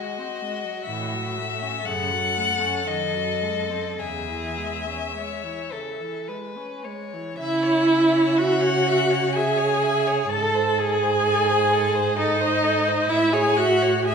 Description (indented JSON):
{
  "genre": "classical, slow romantic movement for string quartet",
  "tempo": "50-66 BPM",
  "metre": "3/4",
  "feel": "rubato",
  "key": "C# minor",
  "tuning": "A4 = 440 Hz",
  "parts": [
    { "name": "rich violin", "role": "melody", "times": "0.0-14.1 s", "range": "D#5 to A5", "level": "-27 LUFS", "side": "left 8 dB", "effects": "none" },
    { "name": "rich violin", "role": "second line", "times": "0.0-14.1 s", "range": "F#4 to E5", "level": "-29 LUFS", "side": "left 3 dB", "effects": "none" },
    { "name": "warm viola", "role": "accompaniment", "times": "0.0-14.1 s", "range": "C#3 to A4", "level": "-23 LUFS", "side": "right 2 dB", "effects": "none" },
    { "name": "rich cello", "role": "bass", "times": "0.9-14.1 s", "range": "E2 to C#3", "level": "-30 LUFS", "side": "right 5 dB", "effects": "none" }
  ],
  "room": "wet recital hall reverb, RT60 1.4 s",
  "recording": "minimal, uncompressed stereo recording",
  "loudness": "-20 LUFS",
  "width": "side -6 dB against mid",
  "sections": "0.0-7.4 A section; 7.4-14.1 B section",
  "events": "none",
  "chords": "0.0 G#7; 0.9 A6; 1.8 F#m; 2.9 G#7/F#; 4.0 C#m/E; 7.4 C#m; 10.3 G#; 13.1 Amaj7"
}